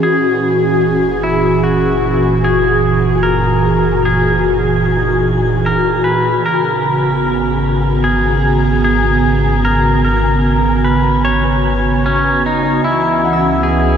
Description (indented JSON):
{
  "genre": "ambient",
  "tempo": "75 BPM",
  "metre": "4/4",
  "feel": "straight",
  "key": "unclear",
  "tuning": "A4 = 438 Hz",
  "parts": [
    { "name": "pedal steel guitar", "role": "melody", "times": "0.0-14.0 s", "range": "C#4 to C#5", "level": "-17 LUFS", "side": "left 1 dB", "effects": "shimmer reverb, diffuse ambient delay" },
    { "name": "airy breathy pad", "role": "sustained chords", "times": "0.0-14.0 s", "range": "A#2 to A#5", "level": "-14 LUFS", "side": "right 1 dB", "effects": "chorus, shimmer reverb" },
    { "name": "concert harp", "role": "arpeggios", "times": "0.0-14.0 s", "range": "D#4 to E6", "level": "-29 LUFS", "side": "left 2 dB", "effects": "none" },
    { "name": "round analog bass", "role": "bass", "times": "0.0-14.0 s", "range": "F#1 to C#2", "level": "-20 LUFS", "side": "equal", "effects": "none" },
    { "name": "wind-like tuned noise texture", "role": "texture", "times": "0.0-14.0 s", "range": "G#5", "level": "-29 LUFS", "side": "equal", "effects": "built-in reverb, ensemble chorus, shimmer reverb" }
  ],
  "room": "wet huge ambient reverb, RT60 7.7 s",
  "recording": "dreamy mix soaked in reverb",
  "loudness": "-11 LUFS",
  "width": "side -8 dB against mid",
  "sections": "0.0-14.0 A section",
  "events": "fade-in on analog synth bass 0.0-14.0; fade-in on synth texture 0.0-14.0",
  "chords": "0.0 F#9; 6.4 G#m11; 12.8 C#m7",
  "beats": "| 0.03 0.83 1.63 2.43 | 3.23 4.03 4.83 5.63 | 6.43 7.23 8.03 8.83 | 9.63 10.43 11.23 12.03 | 12.83 13.63"
}